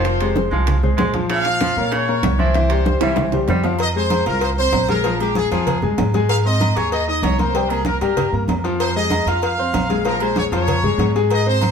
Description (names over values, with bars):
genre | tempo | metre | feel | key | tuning
latin, salsa | 192 BPM | 4/4 | straight | F minor | A4 = 442 Hz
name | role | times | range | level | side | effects
brilliant trumpet section | melody | 0.0-11.7 s | G4 to F5 | -22 LUFS | equal | none
clear baritone saxophone | second line | 0.0-3.7 s | C3 to Ab3 | -26 LUFS | right 4 dB | none
clear concert grand piano | accompaniment | 0.0-11.7 s | E3 to Ab6 | -22 LUFS | left 4 dB | none
upright bass | bass | 0.0-11.7 s | F1 to Bb2 | -21 LUFS | right 1 dB | none
bongos and cowbell | percussion | 0.0-11.7 s | none | -28 LUFS | left 4 dB | none
timbales and agogo bells | percussion | 0.0-11.7 s | none | -26 LUFS | right 6 dB | none
congas | percussion | 0.1-11.7 s | none | -26 LUFS | right 1 dB | none
room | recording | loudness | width
wet studio reverb, RT60 0.9 s | heard from further back in the room | -16 LUFS | side -6 dB against mid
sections
0.0-3.8 A section; 3.8-11.7 B section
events
drum fill 2.9-3.8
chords
0.1 Fm; 1.3 Bbm; 2.5 C; 3.8 Fm; 5.0 Bb5; 6.3 Ab; 7.5 C5; 8.8 Fm7; 10.1 Bbm7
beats
| 0.05 0.36 0.67 0.99 | 1.30 1.61 1.92 2.23 | 2.55 2.86 3.17 3.48 | 3.80 4.11 4.42 4.73 | 5.04 5.36 5.67 5.98 | 6.30 6.61 6.92 7.23 | 7.55 7.86 8.17 8.49 | 8.80 9.11 9.43 9.74 | 10.05 10.37 10.68 10.99 | 11.31 11.62